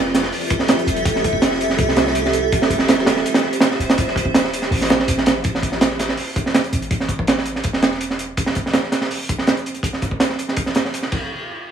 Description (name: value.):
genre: drum and bass, jungle.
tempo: 164 BPM.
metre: 4/4.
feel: straight.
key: A minor.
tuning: A4 = 436 Hz.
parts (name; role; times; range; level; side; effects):
granular cloud pad; sustained chords; 0.0-5.4 s; F4 to E5; -22 LUFS; right 1 dB; built-in reverb.
warm 808-style bass; bass; 0.0-8.4 s; D1 to C2; -27 LUFS; equal; none.
crunchy breakbeat drum kit; drums; 0.1-11.2 s; crash cymbal, hi-hat, kick drum, snare drum; -18 LUFS; right 2 dB; none.
room: light reverb.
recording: small room ambience.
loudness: -16 LUFS.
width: side -8 dB against mid.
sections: 0.0-5.4 A section; 5.4-11.3 B section.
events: drop 0.0-5.4.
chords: 0.0 Fmaj9; 2.5 Dm11; 5.4 A5; 8.4 N.C..